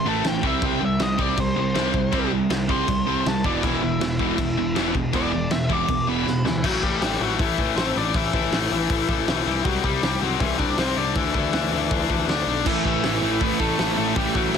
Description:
punk rock; 160 BPM; 4/4; straight; A dorian from 6.6 s; A4 = 442 Hz
smooth overdriven lead guitar; melody; 0.0-14.6 s; E3 to D6; -26 LUFS; left 2 dB
overdriven electric guitar; riff; 0.0-6.6, 12.7-14.6 s; E2 to C4; -25 LUFS; right 13 dB
tight distorted guitar; riff; 0.0-14.6 s; E2 to D4; -25 LUFS; left 16 dB; distortion
fuzz picked electric bass; bass; 0.0-14.6 s; E1 to D2; -29 LUFS; equal; overdrive
loose indie drum kit; drums; 0.2-14.6 s; crash cymbal, hi-hat, kick drum, snare drum; -27 LUFS; equal
light reverb; dense, heavily limited modern master; -20 LUFS; side -7 dB against mid
0.0-6.6 A section; 6.6-14.6 B section
lead electric guitar solo 0.0-6.6; drum fill 6.3-6.6
0.4 C5; 3.4 E5; 6.6 A5; 9.5 C; 11.2 D5; 12.7 A5

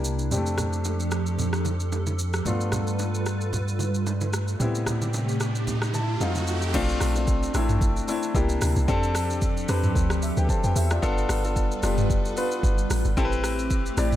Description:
amapiano; 112 BPM; 4/4; swing 55% on 16ths; A4 = 445 Hz
warm grand piano; accompaniment; 0.0-14.2 s; Gb3 to A5; -28 LUFS; left 3 dB; low-pass filter
hollow soft pad; sustained chords; 0.0-14.2 s; C3 to B4; -32 LUFS; right 1 dB; ensemble chorus, sidechain pumping, low-pass filter
punchy sub bass; bass; 0.0-6.7 s; C2 to A2; -27 LUFS; equal
afro-pop drum kit; drums; 0.0-14.2 s; crash cymbal, hi-hat, kick drum, rim click, shaker, toms; -28 LUFS; equal
congas and bongos; percussion; 0.3-6.5 s; -34 LUFS; right 4 dB
riser; sound effects; 4.2-6.7 s; -36 LUFS; right 3 dB
deep log drum bass; bass; 6.7-14.2 s; F1 to F2; -25 LUFS; equal
little or no reverb; -22 LUFS; side -12 dB against mid
0.0-6.7 A section; 6.7-14.2 B section
riser 4.2-6.7; grand piano fill 5.7-6.7; drop 6.7-14.2
0.3 F69; 2.5 G9; 4.6 Am9; 6.2 F7b9; 6.7 Bbmaj9; 8.3 C9; 8.9 F69; 11.0 G9; 13.2 Am9

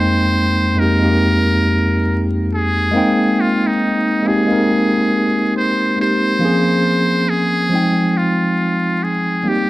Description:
hip hop; 69 BPM; 4/4; swing 57% on 16ths; F minor; A4 = 440 Hz
trumpet with metal mute; melody; 0.0-9.7 s; Eb4 to C5; -19 LUFS; right 1 dB; low-pass filter
mellow tine electric piano; accompaniment; 0.0-9.7 s; F2 to G5; -15 LUFS; equal; medium stereo tremolo, cassette tape, low-pass filter
wet studio reverb, RT60 0.5 s; vinyl crackle; -14 LUFS; side -18 dB against mid
0.0-6.4 A section; 6.4-9.7 B section
0.0 Fm11; 2.9 Abmaj7; 6.4 Bbm9; 7.7 Fm7

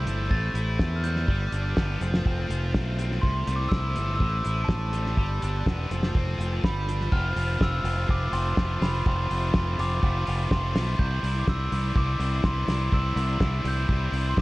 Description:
indie rock; 124 BPM; 4/4; straight; A4 = 440 Hz
glockenspiel with rubber mallets; melody; 0.0-14.4 s; A5 to A6; -31 LUFS; right 1 dB; tape echo
combo organ; sustained chords; 0.0-14.4 s; G3 to C6; -38 LUFS; left 1 dB
high-gain distorted guitar; riff; 0.0-14.4 s; F2 to A4; -34 LUFS; left 1 dB; distortion, tape echo
growling fingered electric bass; bass; 0.0-14.4 s; F1 to E2; -27 LUFS; equal; overdrive
cloth-damped thuddy drum kit; drums; 0.1-14.4 s; hi-hat, kick drum, snare drum; -27 LUFS; equal; vintage 12-bit sampler grit
light reverb; echo-heavy mix, cassette tape; -23 LUFS; side -19 dB against mid
0.0-7.1 A section; 7.1-14.4 B section
0.3 Am7; 1.3 G; 2.0 F; 3.2 C6; 4.2 Am7; 5.2 G; 5.9 F; 6.6 G7; 7.1 F; 11.0 Cadd9

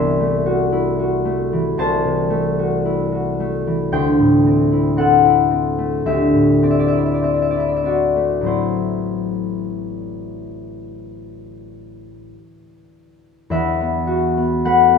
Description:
classical, solo harp piece; 47-58 BPM; 4/4; rubato; A4 = 438 Hz
concert harp; solo; 0.0-15.0 s; A1 to C6; -16 LUFS; left 2 dB
moderate stone room reverb, RT60 1.2 s; -15 LUFS; side -6 dB against mid
0.0-13.5 A section; 13.5-15.0 B section
0.0 Am6/C; 3.9 D9sus4; 8.5 Am6; 13.5 Esus2

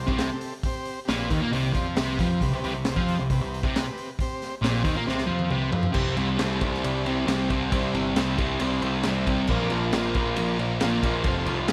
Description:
garage rock duo or trio; 136 BPM; 4/4; straight; A4 = 440 Hz
overdriven combo organ; sustained chords; 0.0-11.7 s; C4 to D5; -37 LUFS; equal
fuzz guitar; riff; 0.0-11.7 s; F2 to C4; -28 LUFS; equal; distortion
growling picked electric bass; bass; 0.0-11.7 s; F1 to Bb2; -34 LUFS; equal; overdrive
crunchy breakbeat drum kit; drums; 0.1-11.7 s; crash cymbal, hi-hat, kick drum, ride cymbal, snare drum, toms; -31 LUFS; equal
moderate scoring stage reverb, RT60 1.6 s; -25 LUFS; mono
0.0-6.0 A section; 6.0-11.7 B section
drum fill 5.1-6.0
0.0 C5; 6.0 C; 9.5 Bb

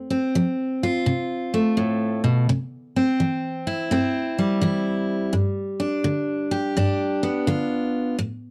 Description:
country; 84 BPM; 4/4; swing 65% on 8ths; A4 = 440 Hz
picked steel-string acoustic guitar; solo; 0.0-8.5 s; F2 to G4; -23 LUFS; equal
light reverb; dry, close 1970s-style studio recording; -23 LUFS; mono
0.0-8.5 A section
0.0 F; 2.5 C; 5.3 G

